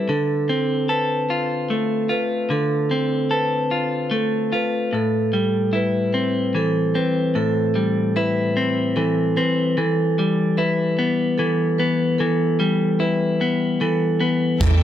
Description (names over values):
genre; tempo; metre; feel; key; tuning
post-rock; 50 BPM (dotted quarters); 6/8; straight; A minor; A4 = 440 Hz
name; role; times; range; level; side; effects
clean electric guitar; arpeggios; 0.0-14.8 s; A2 to A4; -20 LUFS; left 2 dB; analog delay
vibraphone with medium hard mallets; arpeggios; 0.0-14.8 s; A4 to B4; -24 LUFS; right 4 dB; analog delay
bright studio string section; sustained chords; 14.6-14.8 s; A4 to A5; -30 LUFS; equal; none
fingered electric bass; bass; 14.6-14.8 s; E2; -15 LUFS; right 1 dB; none
huge arena drum kit; drums; 14.6-14.8 s; hi-hat, kick drum; -20 LUFS; right 1 dB; none
room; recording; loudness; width
light reverb, small room ambience; dark, warm production; -18 LUFS; side -11 dB against mid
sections
0.0-4.9 A section; 4.9-14.8 A section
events
none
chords
0.1 Dm7; 4.9 Am7; 9.8 Em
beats
| 0.09 1.30 | 2.52 3.73 | 4.94 6.15 | 7.36 8.56 | 9.77 10.98 | 12.19 13.40 | 14.61